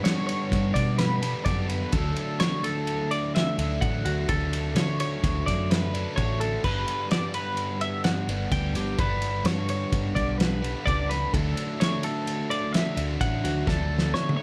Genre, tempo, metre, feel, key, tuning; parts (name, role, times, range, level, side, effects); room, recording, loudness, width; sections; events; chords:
math rock and midwest emo; 128 BPM; 5/4; straight; D major; A4 = 439 Hz
twelve-string electric guitar; arpeggios; 0.0-14.4 s; F#4 to G5; -33 LUFS; equal; lush chorus
overdriven electric guitar; riff; 0.0-14.4 s; G2 to D4; -33 LUFS; equal
hollow-body short-scale picked electric bass; bass; 0.0-14.4 s; G1 to G3; -31 LUFS; equal
loose indie drum kit; drums; 0.0-14.4 s; crash cymbal, kick drum, ride cymbal, snare drum, toms; -31 LUFS; equal
little or no reverb; dark, warm production; -26 LUFS; mono
0.0-14.4 A section
drum fill 13.7-14.4
0.0 Gmaj7; 1.9 Dmaj7; 6.6 G; 11.3 Dmaj7